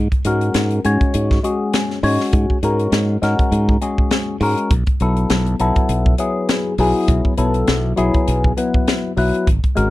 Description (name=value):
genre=electric jazz fusion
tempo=101 BPM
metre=4/4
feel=swing 56% on 16ths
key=unclear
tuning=A4 = 440 Hz
part: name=modern bright fingered electric bass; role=bass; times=0.0-9.9 s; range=Ab1 to Ab2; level=-19 LUFS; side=equal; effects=none
part: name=crisp fusion drum kit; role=drums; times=0.1-9.9 s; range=hi-hat, kick drum, snare drum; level=-19 LUFS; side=equal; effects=none
part: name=bright tine electric piano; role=accompaniment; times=0.3-9.9 s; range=F#3 to Db5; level=-19 LUFS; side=left 2 dB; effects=phaser
room=little or no reverb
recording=dark, warm production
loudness=-15 LUFS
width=side -17 dB against mid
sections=0.0-9.9 A section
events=none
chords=0.0 Ab9sus4; 4.7 B7sus4